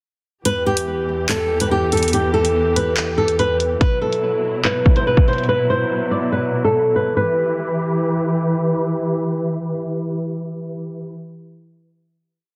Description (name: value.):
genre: hip hop, drill.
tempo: 143 BPM.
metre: 4/4.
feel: half-time.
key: E minor.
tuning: A4 = 440 Hz.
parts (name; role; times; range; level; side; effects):
flamenco guitar; melody; 0.5-8.4 s; G4 to D5; -21 LUFS; equal; tape echo.
dark symphonic string section; sustained chords; 0.5-11.1 s; E2 to B4; -24 LUFS; equal; none.
drill drum kit; drums; 0.5-5.5 s; handclaps, hi-hat, kick drum; -20 LUFS; equal; vintage 12-bit sampler grit.
room: light reverb, studio reverb.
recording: dense, heavily limited modern master, low-pass filter.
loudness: -19 LUFS.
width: mono.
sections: 0.5-7.2 breakdown; 7.2-10.5 final chord.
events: filter sweep 0.5-7.2.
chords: 0.5 Em; 3.8 Bsus4; 7.2 Em.